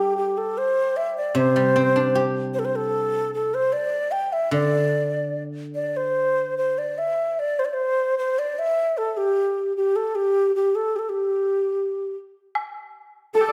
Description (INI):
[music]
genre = chinese traditional, Chinese chamber ensemble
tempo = 75 BPM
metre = 2/4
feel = rubato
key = G zhi mode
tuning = A4 = 440 Hz
[part]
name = breathy xiao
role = melody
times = 0.0-13.5 s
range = G4 to G5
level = -24 LUFS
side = equal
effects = none
[part]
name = hammered dulcimer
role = second line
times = 0.0-2.3, 13.3-13.5 s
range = G4 to C5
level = -33 LUFS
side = equal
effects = none
[part]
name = guzheng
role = accompaniment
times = 0.0-7.0 s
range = C3 to G4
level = -28 LUFS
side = equal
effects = none
[part]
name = woodblock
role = percussion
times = 12.6-12.7 s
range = none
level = -32 LUFS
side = equal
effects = none
[part]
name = clear horsehead fiddle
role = second line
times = 13.3-13.5 s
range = A4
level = -26 LUFS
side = equal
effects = none
[part]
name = warm erhu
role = second line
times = 13.4-13.5 s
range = G4 to D5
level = -27 LUFS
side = equal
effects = none
[sound]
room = moderate recital hall reverb, RT60 1.5 s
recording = none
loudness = -23 LUFS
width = mono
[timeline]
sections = 0.0-12.6 A section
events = none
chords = none